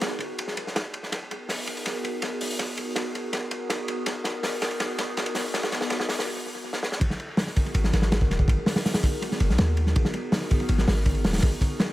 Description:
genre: drum and bass, jungle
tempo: 163 BPM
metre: 4/4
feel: straight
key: G# minor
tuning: A4 = 440 Hz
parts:
  - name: warbly tape-like pad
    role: sustained chords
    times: 0.0-11.9 s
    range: B3 to A#4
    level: -32 LUFS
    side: equal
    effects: chorus, built-in reverb, phaser
  - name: crunchy breakbeat drum kit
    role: drums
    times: 0.0-11.9 s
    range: crash cymbal, hi-hat, kick drum, ride cymbal, snare drum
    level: -25 LUFS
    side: equal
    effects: high-pass filter on kick, high-pass filter on cymbals, high-pass filter on hats, high-pass filter on snare, high-pass filter on room, analog delay
  - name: warm 808-style bass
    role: bass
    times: 0.6-11.5 s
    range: D#1 to D#2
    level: -24 LUFS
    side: equal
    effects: high-pass filter
room: light reverb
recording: echo-heavy mix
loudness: -24 LUFS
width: side -16 dB against mid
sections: 0.0-7.0 A section; 7.0-11.9 B section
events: build-up 0.0-7.0; drum fill 1.1-6.3, 6.7; break 6.3-7.0; drop 7.0-11.9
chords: 0.0 G#m9

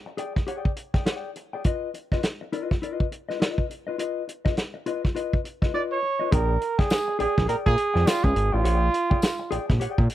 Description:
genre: funk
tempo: 103 BPM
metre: 4/4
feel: swing 60% on 16ths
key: Bb mixolydian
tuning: A4 = 437 Hz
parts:
  - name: mellow electric guitar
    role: accompaniment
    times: 0.1-10.1 s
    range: F4 to G5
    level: -31 LUFS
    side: left 6 dB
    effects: none
  - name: warm soul drum kit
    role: drums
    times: 0.2-10.1 s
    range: hi-hat, kick drum, snare drum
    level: -24 LUFS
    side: equal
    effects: none
  - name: dark trumpet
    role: melody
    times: 5.7-9.7 s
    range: F4 to D5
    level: -24 LUFS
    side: right 4 dB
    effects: none
  - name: fat analog bass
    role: bass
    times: 6.3-10.1 s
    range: Ab1 to Bb2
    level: -23 LUFS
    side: equal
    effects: none
  - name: tambourine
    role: percussion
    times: 6.9-9.4 s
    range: none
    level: -40 LUFS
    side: left 6 dB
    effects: none
room: little or no reverb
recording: dry, close 1970s-style studio recording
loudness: -22 LUFS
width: side -13 dB against mid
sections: 0.0-6.3 A section; 6.3-10.1 B section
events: none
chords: 0.0 G5; 1.6 Db9/F (rootless); 6.3 Bb13

